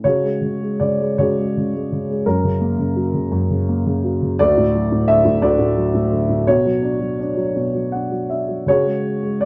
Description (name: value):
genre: classical, lyrical solo piano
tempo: 53-59 BPM (dotted quarters)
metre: 6/8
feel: rubato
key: unclear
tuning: A4 = 440 Hz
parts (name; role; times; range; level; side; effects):
- dark grand piano; solo; 0.0-9.5 s; D2 to F#5; -19 LUFS; equal; none
room: moderate studio ambience, RT60 0.5 s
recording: none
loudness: -19 LUFS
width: mono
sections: 0.0-9.5 A section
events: grand piano fill 7.6-8.7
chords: 0.0 C#sus4; 2.2 F#; 4.4 D; 6.5 Bmadd9; 8.7 C#sus4